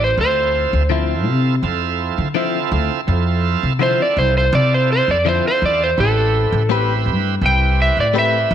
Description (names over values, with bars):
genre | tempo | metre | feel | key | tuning
blues | 83 BPM | 4/4 | straight | unclear | A4 = 438 Hz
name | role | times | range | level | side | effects
electric slide guitar | melody | 0.0-8.5 s | A4 to G5 | -17 LUFS | right 1 dB | slapback echo
bright tonewheel organ | accompaniment | 0.0-8.5 s | C4 to B4 | -23 LUFS | right 11 dB | slow rotary speaker, overdrive
upright bass | bass | 0.0-8.5 s | A1 to D3 | -18 LUFS | left 1 dB | none
direct-recorded clean electric guitar | stabs | 0.9-8.4 s | D3 to B4 | -23 LUFS | left 10 dB | spring reverb
room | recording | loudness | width
light reverb | 1960s-style stereo with parts hard left and right | -14 LUFS | side -9 dB against mid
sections
0.0-8.5 A section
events
none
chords
0.2 Dm9; 6.0 Am9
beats
| 0.18 0.90 1.63 2.35 | 3.08 3.80 4.53 5.25 | 5.98 6.70 7.42 8.15